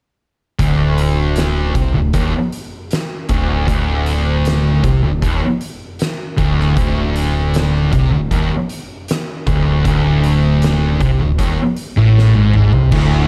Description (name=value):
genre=stoner and doom metal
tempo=78 BPM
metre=4/4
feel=straight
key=unclear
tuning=A4 = 440 Hz
part: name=thick fuzz guitar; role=riff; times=0.6-13.3 s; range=D2 to C3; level=-21 LUFS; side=equal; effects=distortion
part: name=thick fuzz guitar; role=riff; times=0.6-13.3 s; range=D2 to C3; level=-19 LUFS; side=equal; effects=distortion
part: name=overdriven picked electric bass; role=bass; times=0.6-13.3 s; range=D1 to C2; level=-21 LUFS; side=equal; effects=none
part: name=oversized low-tuned drum kit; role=drums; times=0.6-13.1 s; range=crash cymbal, hi-hat, kick drum, snare drum, toms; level=-24 LUFS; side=equal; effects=none
part: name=mellow tonewheel organ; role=sustained chords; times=12.9-13.3 s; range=D3 to E4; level=-25 LUFS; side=equal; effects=slow rotary speaker, chorus vibrato
room=moderate large studio reverb, RT60 0.9 s, studio ambience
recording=dark, warm production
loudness=-16 LUFS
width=mono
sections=0.6-12.9 A section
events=drum fill 12.2-12.9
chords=0.6 D5